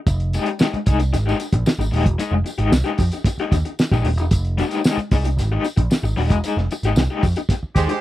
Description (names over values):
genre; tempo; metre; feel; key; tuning
funk; 113 BPM; 4/4; straight; F minor; A4 = 440 Hz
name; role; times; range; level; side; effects
picked electric bass; bass; 0.1-7.9 s; Eb1 to F2; -20 LUFS; right 1 dB; none
cloth-damped thuddy drum kit; drums; 0.1-8.0 s; hi-hat, kick drum, snare drum; -19 LUFS; equal; none
tambourine; percussion; 0.1-7.9 s; none; -38 LUFS; left 1 dB; none
raw garage guitar; accompaniment; 0.3-7.9 s; Ab3 to Ab4; -23 LUFS; left 4 dB; overdrive, tremolo
warm horn section; second line; 7.7-8.0 s; Ab3 to C5; -21 LUFS; right 5 dB; none
room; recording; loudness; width
little or no reverb; dry, close 1970s-style studio recording; -17 LUFS; side -14 dB against mid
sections
0.1-8.0 A section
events
band accent 6.4-8.0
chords
0.1 Fm9